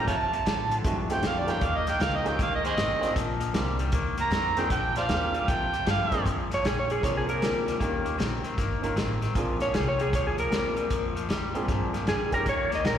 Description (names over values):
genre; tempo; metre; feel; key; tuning
electric blues shuffle; 155 BPM; 4/4; swing 65% on 8ths; Bb mixolydian; A4 = 440 Hz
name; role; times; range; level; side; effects
overdriven harmonica; second line; 0.0-6.3 s; Ab4 to Bb5; -28 LUFS; right 4 dB; slapback echo
warm upright piano; accompaniment; 0.0-12.4 s; Ab3 to Bb4; -34 LUFS; right 4 dB; slapback echo
electric guitar at the edge of break-up; riff; 0.0-13.0 s; F2 to C4; -32 LUFS; left 6 dB; slapback echo
upright bass; bass; 0.0-13.0 s; G1 to Bb2; -32 LUFS; equal; none
warm soul drum kit; drums; 0.1-13.0 s; hi-hat, kick drum, snare drum; -31 LUFS; equal; none
clean lap steel guitar; melody; 6.5-13.0 s; Ab4 to Eb5; -28 LUFS; equal; slapback echo
room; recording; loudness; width
light reverb, small room ambience; live gig heard through the venue's PA, recital hall reverb; -24 LUFS; side -9 dB against mid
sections
0.0-6.3 A section; 6.3-13.0 A section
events
harmonica solo 0.0-6.3; electric slide guitar solo 6.3-13.0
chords
0.1 F9; 1.6 Eb7sus2; 3.2 Bb9; 3.9 Ebsus2; 4.7 Bb9; 5.5 Fsus2; 6.3 Bb9; 7.8 Eb9; 9.4 Bb9; 12.5 Eb7(no3)